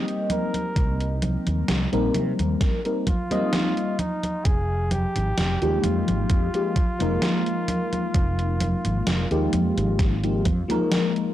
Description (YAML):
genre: vaporwave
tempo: 65 BPM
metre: 4/4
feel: straight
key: F minor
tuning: A4 = 440 Hz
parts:
  - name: warm flugelhorn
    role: melody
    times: 0.0-10.9 s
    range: Eb4 to Bb4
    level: -32 LUFS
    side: equal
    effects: tape echo
  - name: mellow FM electric piano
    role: accompaniment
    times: 0.0-11.3 s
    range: F3 to Eb5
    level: -25 LUFS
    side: left 1 dB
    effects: phaser, analog chorus, analog delay
  - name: gated 80s digital drum machine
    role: drums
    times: 0.1-11.3 s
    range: congas, hi-hat, snare drum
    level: -27 LUFS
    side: equal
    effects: gated reverb, gated reverb snare, small room ambience
  - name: fretless electric bass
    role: bass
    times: 0.8-10.6 s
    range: F1 to C3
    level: -25 LUFS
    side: equal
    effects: analog chorus
  - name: electronic kick drum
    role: drums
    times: 0.8-10.7 s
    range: none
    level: -22 LUFS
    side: equal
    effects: small room ambience
room: little or no reverb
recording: dry, gritty hardware recording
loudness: -21 LUFS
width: side -13 dB against mid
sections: 0.0-11.3 A section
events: none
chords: 0.0 Cm7; 4.0 Fm11